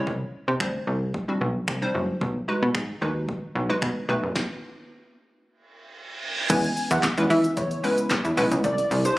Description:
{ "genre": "dance-pop", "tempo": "112 BPM", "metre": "4/4", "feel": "straight", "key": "unclear", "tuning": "A4 = 440 Hz", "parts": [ { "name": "hollow square pluck", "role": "accompaniment", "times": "0.0-9.2 s", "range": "G3 to C5", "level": "-28 LUFS", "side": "equal", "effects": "chorus, sidechain pumping" }, { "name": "plucky analog bass", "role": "bass", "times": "0.0-9.1 s", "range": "F#1 to E3", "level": "-25 LUFS", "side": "equal", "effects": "sidechain pumping" }, { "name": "punchy analog drum machine", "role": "drums", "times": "0.1-9.2 s", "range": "crash cymbal, finger snaps, handclaps, hi-hat, kick drum, shaker, snare drum", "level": "-29 LUFS", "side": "equal", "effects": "none" }, { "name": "reverse cymbal", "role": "sound effects", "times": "5.9-6.5 s", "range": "none", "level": "-31 LUFS", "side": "right 4 dB", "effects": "none" }, { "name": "airy dreamy lead", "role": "melody", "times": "6.5-9.1 s", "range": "B4 to G#5", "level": "-26 LUFS", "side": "equal", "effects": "chorus, sidechain pumping" }, { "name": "ethereal airy pad", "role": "sustained chords", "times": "7.5-9.2 s", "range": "C3 to E4", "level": "-36 LUFS", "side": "left 1 dB", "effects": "none" }, { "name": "group handclap", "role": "percussion", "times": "7.0-8.2 s", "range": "none", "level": "-39 LUFS", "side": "right 1 dB", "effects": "none" } ], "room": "light reverb", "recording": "recorded on a phone in the room, club reverb, compression", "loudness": "-22 LUFS", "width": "side -18 dB against mid", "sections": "0.0-6.5 A section; 6.5-9.2 B section", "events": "stop 4.4-6.5; reverse cymbal 5.9-6.5; drop 6.5-9.2", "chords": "0.1 Csus2; 2.2 G#m7/B; 4.1 B7; 6.5 E6; 8.6 Csus2" }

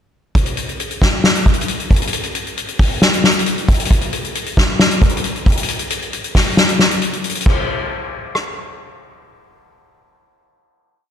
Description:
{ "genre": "hip hop", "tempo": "135 BPM", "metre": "4/4", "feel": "half-time", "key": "none", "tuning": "none", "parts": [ { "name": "soft-mallet drum kit", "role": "drums", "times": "0.3-8.5 s", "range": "crash cymbal, hi-hat, kick drum, rim click, snare drum", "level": "-14 LUFS", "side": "equal", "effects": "none" } ], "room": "light reverb", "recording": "dry, gritty hardware recording", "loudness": "-14 LUFS", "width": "side -9 dB against mid", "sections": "0.4-7.5 hook; 7.5-11.0 final hit", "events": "kick muted 6.6-7.5", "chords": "none" }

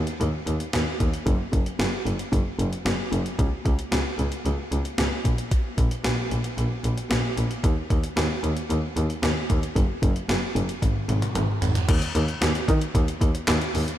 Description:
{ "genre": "synth-pop", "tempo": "113 BPM", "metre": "4/4", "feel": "straight", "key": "unclear", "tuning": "A4 = 440 Hz", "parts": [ { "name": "gated 80s digital drum machine", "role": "drums", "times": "0.1-14.0 s", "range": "crash cymbal, handclaps, hi-hat, kick drum, snare drum, toms", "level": "-25 LUFS", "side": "equal", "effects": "gated reverb, gated reverb snare, overdrive" }, { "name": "warm double bass", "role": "bass", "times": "0.2-13.8 s", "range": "Gb1 to Eb3", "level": "-25 LUFS", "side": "equal", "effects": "none" } ], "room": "light reverb", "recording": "none", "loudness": "-22 LUFS", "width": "side -12 dB against mid", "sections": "0.0-11.9 A section; 11.9-14.0 B section", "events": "drum fill 10.8-11.9", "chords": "none" }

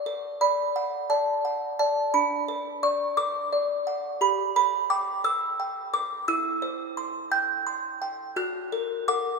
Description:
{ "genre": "classical, lullaby for music box", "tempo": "58 BPM (dotted quarters)", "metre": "6/8", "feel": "straight", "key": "unclear", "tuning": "A4 = 438 Hz", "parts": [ { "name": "music box", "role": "solo", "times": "0.0-9.4 s", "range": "D4 to G6", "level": "-24 LUFS", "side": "right 1 dB", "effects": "none" } ], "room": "wet church reverb, RT60 3.6 s", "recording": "recorded in a church or concert hall", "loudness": "-24 LUFS", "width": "side -4 dB against mid", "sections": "0.0-9.4 A section", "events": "none", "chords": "0.1 Bm; 2.1 Bm/D; 4.2 G; 6.3 C/E; 8.4 F#" }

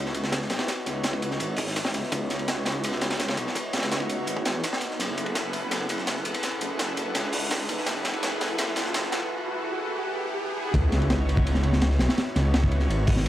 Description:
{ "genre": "drum and bass, jungle", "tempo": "167 BPM", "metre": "4/4", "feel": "straight", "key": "C# minor", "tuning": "A4 = 442 Hz", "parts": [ { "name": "lush unison pad", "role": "sustained chords", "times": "0.0-13.3 s", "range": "B3 to F#5", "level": "-31 LUFS", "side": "equal", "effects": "chorus" }, { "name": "detuned saw bass", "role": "bass", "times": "0.0-13.3 s", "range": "E1 to E2", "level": "-28 LUFS", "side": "equal", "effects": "high-pass filter" }, { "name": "riser and sub drop", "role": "sound effects", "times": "3.6-12.2 s", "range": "none", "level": "-34 LUFS", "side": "right 1 dB", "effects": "none" }, { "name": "breakbeat sampler-style drum kit", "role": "drums", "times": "0.1-9.2 s", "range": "hi-hat, snare drum", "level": "-35 LUFS", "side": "right 1 dB", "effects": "high-pass filter on hats, high-pass filter on snare, high-pass filter on room" }, { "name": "crunchy breakbeat drum kit", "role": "drums", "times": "0.1-13.3 s", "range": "hi-hat, kick drum, ride cymbal, snare drum", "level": "-28 LUFS", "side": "equal", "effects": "high-pass filter on kick, high-pass filter on cymbals, high-pass filter on hats, high-pass filter on snare, high-pass filter on room" } ], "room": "light reverb, small room reverb", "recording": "vinyl crackle, high-pass filter", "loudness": "-24 LUFS", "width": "side -13 dB against mid", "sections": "0.0-10.7 A section; 10.7-13.3 B section", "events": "build-up 0.0-10.7; riser 3.6-10.7; drum fill 5.0-9.3; break 9.3-10.7; drop 10.7-13.3; impact 10.7-12.2", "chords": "0.0 C#m11; 5.0 F#m11; 10.7 C#m11" }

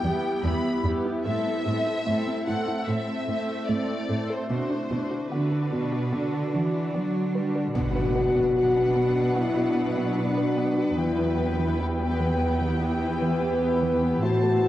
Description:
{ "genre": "cinematic", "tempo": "74 BPM", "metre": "4/4", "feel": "straight", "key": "B phrygian", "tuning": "A4 = 440 Hz", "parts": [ { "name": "rich symphonic violin section", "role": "melody", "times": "0.0-6.9 s", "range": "B4 to B5", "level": "-33 LUFS", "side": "left 2 dB", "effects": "none" }, { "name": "warm symphonic viola section", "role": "accompaniment", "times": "0.0-14.7 s", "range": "A3 to A4", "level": "-33 LUFS", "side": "equal", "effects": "none" }, { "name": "evolving wavetable pad", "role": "sustained chords", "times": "0.0-14.7 s", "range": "D3 to E5", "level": "-30 LUFS", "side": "equal", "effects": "chorus, built-in reverb" }, { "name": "woody wave-folded pluck", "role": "arpeggios", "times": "0.0-14.7 s", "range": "E3 to B4", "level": "-35 LUFS", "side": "right 1 dB", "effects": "none" }, { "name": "rich symphonic cello section", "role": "bass", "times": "0.0-14.7 s", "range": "E2 to G3", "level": "-28 LUFS", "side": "right 2 dB", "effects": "none" }, { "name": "mellow French horn section", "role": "sustained chords", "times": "7.7-14.7 s", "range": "B3 to F#4", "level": "-25 LUFS", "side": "left 2 dB", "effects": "none" }, { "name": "impact", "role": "sound effects", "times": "7.7-11.0 s", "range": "none", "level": "-33 LUFS", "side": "equal", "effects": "none" }, { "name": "rich symphonic violin section", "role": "second line", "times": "7.8-14.7 s", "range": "B4 to A5", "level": "-33 LUFS", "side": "left 1 dB", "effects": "none" } ], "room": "wet recital hall reverb, RT60 1.3 s", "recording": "worn, warbling old tape, cassette tape, warbly pitch drift", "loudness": "-23 LUFS", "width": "side -13 dB against mid", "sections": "0.0-7.7 A section; 7.7-14.7 B section", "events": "impact 7.7-11.0", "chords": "0.0 Em; 1.3 Am; 4.5 Bm; 11.0 Em" }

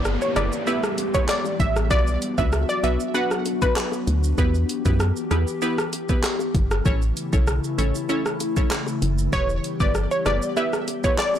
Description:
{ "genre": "dancehall", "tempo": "97 BPM", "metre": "4/4", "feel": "straight", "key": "E dorian", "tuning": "A4 = 438 Hz", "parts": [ { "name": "analog pluck", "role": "melody", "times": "0.0-3.7, 9.3-11.3 s", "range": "B4 to F#5", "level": "-25 LUFS", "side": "equal", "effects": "chorus, digital delay" }, { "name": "wavetable chord stab", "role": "accompaniment", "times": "0.0-11.2 s", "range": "B3 to C#5", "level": "-28 LUFS", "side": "right 1 dB", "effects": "none" }, { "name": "glassy FM pad", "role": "sustained chords", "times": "0.0-11.4 s", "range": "C#3 to G4", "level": "-28 LUFS", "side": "left 2 dB", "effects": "ensemble chorus, built-in reverb, sidechain pumping" }, { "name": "solid FM bass", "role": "bass", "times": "0.0-10.4 s", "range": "E1 to F#2", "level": "-22 LUFS", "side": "equal", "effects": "none" }, { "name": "downlifter", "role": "sound effects", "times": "0.0-4.4 s", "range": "none", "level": "-34 LUFS", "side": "left 1 dB", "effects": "none" }, { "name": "pop drum kit", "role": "drums", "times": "0.1-11.4 s", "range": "handclaps, hi-hat, kick drum, rim click, shaker", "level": "-24 LUFS", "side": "equal", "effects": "overdrive, soft clipping on snare" }, { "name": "bongos", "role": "percussion", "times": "0.4-11.4 s", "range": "none", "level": "-35 LUFS", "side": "left 7 dB", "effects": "none" } ], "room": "digital ambience", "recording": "blown-out, overdriven recording, overdrive", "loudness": "-20 LUFS", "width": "side -10 dB against mid", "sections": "0.0-11.4 A section", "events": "none", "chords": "0.0 Em; 1.9 Bm; 4.4 Em; 6.9 A; 9.3 Em" }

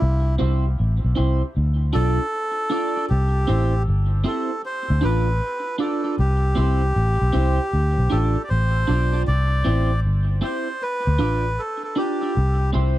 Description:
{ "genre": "reggae", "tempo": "78 BPM", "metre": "4/4", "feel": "swing 64% on 16ths", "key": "C major", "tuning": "A4 = 440 Hz", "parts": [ { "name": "melodica", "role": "melody", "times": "0.0-12.7 s", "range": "E4 to D5", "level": "-26 LUFS", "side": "equal", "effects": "dub echo" }, { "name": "vintage muted fingered electric bass", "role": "bass", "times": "0.0-13.0 s", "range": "G1 to D2", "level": "-19 LUFS", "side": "equal", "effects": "none" }, { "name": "clean electric guitar", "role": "accompaniment", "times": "0.4-13.0 s", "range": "C4 to D5", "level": "-27 LUFS", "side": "right 2 dB", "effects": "analog chorus, dub echo" } ], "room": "little or no reverb", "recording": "dry, close 1970s-style studio recording", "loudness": "-19 LUFS", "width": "side -14 dB against mid", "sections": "0.0-13.0 A section", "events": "none", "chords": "0.0 C; 1.5 Dm; 3.1 C; 4.6 Dm; 6.2 C; 7.7 Dm; 9.3 C; 10.8 Dm; 12.4 C" }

